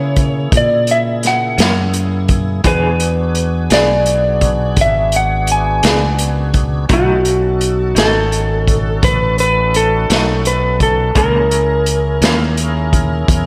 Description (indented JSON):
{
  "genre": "slow blues",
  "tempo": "56 BPM (dotted quarters)",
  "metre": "12/8",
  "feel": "straight",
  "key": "unclear",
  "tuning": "A4 = 445 Hz",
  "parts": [
    { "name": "electric slide guitar", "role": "melody", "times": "0.0-13.5 s", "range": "F#4 to G#5", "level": "-18 LUFS", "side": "equal", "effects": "none" },
    { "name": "tonewheel organ", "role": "sustained chords", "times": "0.0-13.5 s", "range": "C#3 to A#4", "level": "-27 LUFS", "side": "equal", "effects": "slow rotary speaker, overdrive, chorus vibrato" },
    { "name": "fingered electric bass", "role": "bass", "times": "0.0-13.5 s", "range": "G#1 to C#3", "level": "-20 LUFS", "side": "equal", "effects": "none" },
    { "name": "vintage drum kit", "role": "drums", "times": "0.2-13.4 s", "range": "hi-hat, kick drum, snare drum", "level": "-19 LUFS", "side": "equal", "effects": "none" },
    { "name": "electric guitar through a small old amp", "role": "accompaniment", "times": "1.6-12.4 s", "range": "F#2 to G#4", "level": "-24 LUFS", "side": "equal", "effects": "tremolo, slapback echo" }
  ],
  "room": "moderate concert hall reverb, RT60 2.1 s",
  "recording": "big arena sound",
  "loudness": "-14 LUFS",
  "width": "mono",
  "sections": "0.0-13.5 A section",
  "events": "none",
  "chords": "0.0 F#7; 2.6 E7; 6.9 B7; 11.2 F#7"
}